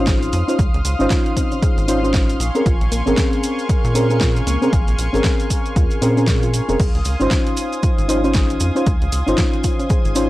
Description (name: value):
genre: deep house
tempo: 116 BPM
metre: 4/4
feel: swing 59% on 16ths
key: Db major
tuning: A4 = 442 Hz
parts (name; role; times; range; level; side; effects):
- warm analog pad; sustained chords; 0.0-10.3 s; F5 to Eb6; -29 LUFS; equal; chorus, sidechain pumping
- soft round pluck; arpeggios; 0.0-10.0 s; Bb3 to Ab4; -28 LUFS; equal; chorus, cassette tape, sidechain pumping, tape echo
- mellow FM electric piano; stabs; 0.0-10.3 s; C4 to C5; -20 LUFS; left 1 dB; chorus, cassette tape, sidechain pumping, tape echo
- rubbery square bass; bass; 0.0-10.3 s; F1 to Bb2; -20 LUFS; equal; none
- soft string machine; texture; 0.0-10.3 s; F5 to Ab6; -34 LUFS; equal; ensemble chorus, sidechain pumping
- deep house drum kit; drums; 0.1-10.3 s; crash cymbal, hi-hat, snare drum; -26 LUFS; equal; overdrive
- electronic kick drum; drums; 0.1-10.0 s; none; -18 LUFS; equal; overdrive
- cabasa; percussion; 0.1-10.3 s; none; -31 LUFS; right 3 dB; none
room: little or no reverb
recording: dry, gritty hardware recording, cassette tape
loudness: -15 LUFS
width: side -17 dB against mid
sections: 0.0-10.3 A section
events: none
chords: 0.0 Dbmaj9; 2.4 Bbm9; 6.8 Dbmaj9